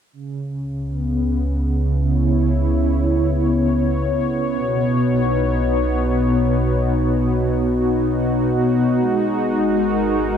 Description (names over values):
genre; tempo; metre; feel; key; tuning
ambient; 54 BPM; 4/4; straight; C# minor; A4 = 440 Hz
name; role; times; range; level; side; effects
warm analog pad; sustained chords; 0.1-10.4 s; B2 to C#5; -18 LUFS; equal; chorus, tremolo
deep rumbling drone; bass; 0.8-10.4 s; G#1 to C#2; -23 LUFS; equal; built-in reverb, phaser, tube saturation
room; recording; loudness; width
moderate huge ambient reverb, RT60 8.8 s; cassette tape; -17 LUFS; side -8 dB against mid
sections
0.1-10.4 A section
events
fade-out on synth drone 0.1-10.4; filter sweep on analog synth pad 0.1-10.4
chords
0.1 C#m7; 4.6 Badd9; 9.0 G#7(no3)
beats
| 0.11 1.22 2.33 3.44 | 4.55 5.66 6.77 7.88 | 9.00 10.11